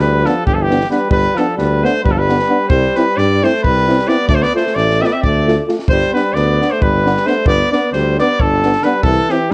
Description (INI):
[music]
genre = balkan folk, Balkan brass band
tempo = 265 BPM (eighths)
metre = 7/8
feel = straight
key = G mixolydian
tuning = A4 = 439 Hz
[part]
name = bright trumpet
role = melody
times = 0.0-9.5 s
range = G4 to E5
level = -19 LUFS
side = equal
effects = none
[part]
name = warm alto saxophone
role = second line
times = 0.0-9.5 s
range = D3 to C4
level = -22 LUFS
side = equal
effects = tape echo
[part]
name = mellow tuba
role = bass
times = 0.0-9.5 s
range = G1 to G2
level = -20 LUFS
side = equal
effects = none
[part]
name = compact cocktail drum kit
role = percussion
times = 0.0-9.5 s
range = kick drum, snare drum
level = -22 LUFS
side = equal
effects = vintage 12-bit sampler grit
[part]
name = dark euphonium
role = accompaniment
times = 0.2-9.4 s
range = D4 to F4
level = -23 LUFS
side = equal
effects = none
[part]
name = warm euphonium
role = accompaniment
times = 0.3-9.4 s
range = A3 to C4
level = -24 LUFS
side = equal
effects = none
[sound]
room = light reverb, small room ambience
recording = worn, warbling old tape, cassette tape, warbly pitch drift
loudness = -14 LUFS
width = mono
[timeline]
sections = 0.0-9.5 A section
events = none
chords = 0.0 G; 2.7 C; 4.3 Dm; 5.9 G; 9.0 C